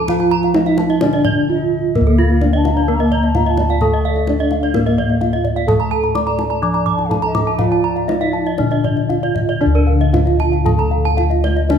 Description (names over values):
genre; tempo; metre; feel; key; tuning
Balinese gamelan; 115-129 BPM; 4/4; straight; D pelog; A4 = 439 Hz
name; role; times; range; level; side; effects
gamelan-type bronze metallophone; melody; 0.0-11.8 s; Bb3 to D5; -19 LUFS; right 2 dB; none
gamelan-type bronze metallophone; accompaniment; 0.0-11.8 s; D3 to D4; -25 LUFS; left 3 dB; none
gamelan-type bronze metallophone; arpeggios; 0.0-11.6 s; F4 to D6; -23 LUFS; right 6 dB; none
gamelan-type bossed gongs; bass; 0.0-11.8 s; D2 to Bb4; -18 LUFS; left 1 dB; none
gamelan-type bronze metallophone; arpeggios; 0.1-11.8 s; Bb4 to D6; -24 LUFS; left 4 dB; none
kendang; percussion; 0.1-11.8 s; none; -23 LUFS; equal; none
mellow bass bansuri; second line; 1.5-9.2 s; D5 to Bb5; -26 LUFS; left 2 dB; none
room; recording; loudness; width
moderate recital hall reverb, RT60 1.4 s; none; -13 LUFS; side -8 dB against mid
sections
0.0-9.6 A section; 9.6-11.8 B section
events
break 1.3-2.0; drum fill 1.4-2.0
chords
none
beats
| 0.09 0.55 1.02 1.49 | 1.95 2.42 2.88 3.35 | 3.81 4.28 4.75 5.21 | 5.68 6.15 6.62 7.10 | 7.59 8.09 8.59 9.10 | 9.62 10.14 10.66 11.19 | 11.71